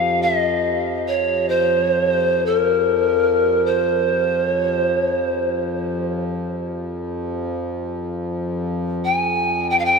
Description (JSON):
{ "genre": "world meditative, free-time meditation music", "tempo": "free time", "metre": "none", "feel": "none", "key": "F minor", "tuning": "A4 = 440 Hz", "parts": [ { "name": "breathy pan flute", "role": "melody", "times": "0.0-10.0 s", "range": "Bb4 to Ab5", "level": "-18 LUFS", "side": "equal", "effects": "ping-pong delay" }, { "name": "hand-pumped harmonium", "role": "drone", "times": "0.0-10.0 s", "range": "F2", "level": "-25 LUFS", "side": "left 1 dB", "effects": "none" }, { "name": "quartz singing bowl", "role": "texture", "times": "0.0-5.2 s", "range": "G4", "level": "-35 LUFS", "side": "left 7 dB", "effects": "none" } ], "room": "wet huge ambient reverb, RT60 4.8 s", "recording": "none", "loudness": "-18 LUFS", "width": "side -4 dB against mid", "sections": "0.0-10.0 A section", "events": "none", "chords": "none" }